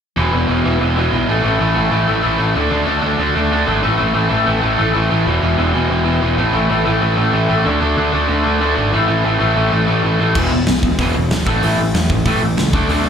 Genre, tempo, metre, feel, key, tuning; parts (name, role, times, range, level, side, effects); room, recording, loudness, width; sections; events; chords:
punk rock; 188 BPM; 4/4; straight; A4 = 440 Hz
raw garage guitar; riff; 0.2-13.1 s; E2 to D4; -15 LUFS; equal; overdrive
fuzz picked electric bass; bass; 0.2-13.1 s; E1 to A2; -18 LUFS; equal; overdrive
big rock drum kit; drums; 10.3-13.0 s; crash cymbal, hi-hat, kick drum, snare drum; -19 LUFS; equal
little or no reverb; live gig heard through the venue's PA, club reverb; -13 LUFS; side -7 dB against mid
0.2-10.4 A section; 10.4-13.1 B section
0.2 E5; 1.3 A5; 2.6 D5; 3.8 A5; 5.3 E5; 6.4 A5; 7.7 D5; 8.9 A5; 10.4 E5; 11.5 A5